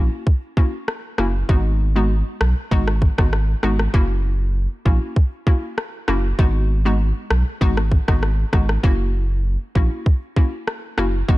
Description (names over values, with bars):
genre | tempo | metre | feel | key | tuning
dancehall | 98 BPM | 4/4 | straight | unclear | A4 = 440 Hz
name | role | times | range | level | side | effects
hollow square pluck | accompaniment | 0.0-11.4 s | G#3 to F#4 | -25 LUFS | left 1 dB | chorus, sidechain pumping
saturated sub bass | bass | 0.0-11.4 s | F#1 to B1 | -19 LUFS | equal | none
island pop drum kit | drums | 0.3-11.4 s | kick drum, rim click | -18 LUFS | equal | none
room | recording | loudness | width
little or no reverb | dark, warm production | -17 LUFS | side -19 dB against mid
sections
0.0-11.4 A section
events
none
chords
0.0 F#7; 1.5 G#m7; 3.9 F#7; 6.4 G#m7; 8.8 F#7